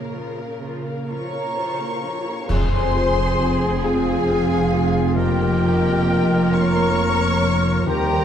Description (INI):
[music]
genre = cinematic, emotional film score for orchestra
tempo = 41-45 BPM (dotted quarters)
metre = 6/8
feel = rubato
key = F minor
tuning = A4 = 440 Hz
[part]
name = warm symphonic violin section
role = melody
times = 0.0-8.2 s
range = Db5 to Db6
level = -29 LUFS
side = left 3 dB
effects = none
[part]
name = warm symphonic violin section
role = second line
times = 0.0-8.2 s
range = G4 to Db5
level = -28 LUFS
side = left 2 dB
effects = none
[part]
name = clear symphonic viola section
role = accompaniment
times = 0.0-8.2 s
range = C3 to Bb4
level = -27 LUFS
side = right 3 dB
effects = none
[part]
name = warm concert grand piano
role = accompaniment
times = 0.0-8.2 s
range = Eb2 to Db5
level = -26 LUFS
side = left 2 dB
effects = none
[part]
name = warm symphonic cello section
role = bass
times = 0.0-8.2 s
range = Eb2 to Db3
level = -25 LUFS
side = right 3 dB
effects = none
[part]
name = flute section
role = second line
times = 1.1-8.2 s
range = Eb5 to Bb5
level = -28 LUFS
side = right 2 dB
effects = none
[part]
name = clear clarinet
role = second line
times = 2.5-8.2 s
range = F4 to G4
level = -31 LUFS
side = right 1 dB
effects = none
[part]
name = warm oboe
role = second line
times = 2.5-8.2 s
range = Ab4 to C5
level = -30 LUFS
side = left 1 dB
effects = none
[part]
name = mellow French horn section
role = sustained chords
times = 2.5-8.2 s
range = F3 to Bb4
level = -26 LUFS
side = left 6 dB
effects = none
[part]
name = rich studio double bass section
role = bass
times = 2.5-8.2 s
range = F1 to Eb2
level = -26 LUFS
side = right 4 dB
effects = none
[part]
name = clash cymbals and concert bass drum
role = percussion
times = 2.5-4.2 s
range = none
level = -28 LUFS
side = equal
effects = none
[sound]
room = moderate scoring stage reverb, RT60 1.8 s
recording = dark, warm production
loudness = -17 LUFS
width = side -9 dB against mid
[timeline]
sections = 0.0-2.5 A section; 2.5-8.2 B section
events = band accent 2.5-3.4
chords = 0.0 Bbm; 2.5 Fm; 5.2 Bbm/F